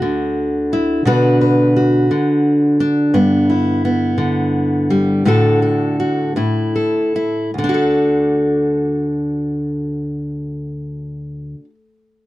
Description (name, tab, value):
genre	folk, solo fingerstyle acoustic guitar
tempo	50-58 BPM (dotted quarters)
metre	6/8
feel	straight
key	D major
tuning	A4 = 439 Hz
part	fingerpicked steel-string acoustic guitar	solo	0.0-11.7 s	D2 to B4	-14 LUFS	equal	none
room	little or no reverb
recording	dry, close 1970s-style studio recording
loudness	-14 LUFS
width	side -16 dB against mid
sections	0.0-7.5 A section; 7.5-12.3 B section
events	slowing down 3.1-7.5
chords	0.0 Dadd9; 1.1 Bm; 3.1 G6; 5.3 D/A; 6.4 A5; 7.5 D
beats	0.03 | 1.06 2.10 | 3.14 4.19 | 5.26 6.37 | 7.54 8.75 | 9.95 11.16